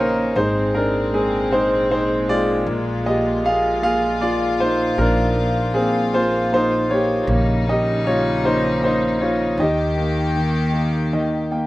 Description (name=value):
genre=acoustic folk-pop ballad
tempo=52 BPM (dotted quarters)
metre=6/8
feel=straight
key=Eb major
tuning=A4 = 440 Hz
part: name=warm concert grand piano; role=melody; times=0.0-11.7 s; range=Eb3 to G5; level=-18 LUFS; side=equal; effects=none
part: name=warm chamber string section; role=sustained chords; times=0.0-11.7 s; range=Bb2 to G4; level=-25 LUFS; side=left 1 dB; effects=none
part: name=upright bass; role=bass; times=0.0-11.7 s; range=Ab1 to Eb2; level=-25 LUFS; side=equal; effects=none
room=little or no reverb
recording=recorded outdoors, with no room sound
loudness=-17 LUFS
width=side -17 dB against mid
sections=0.0-11.7 A section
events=grand piano fill 10.7-11.7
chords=0.4 Abadd9; 2.7 Bb7; 7.3 Eb7/Bb; 9.6 Eb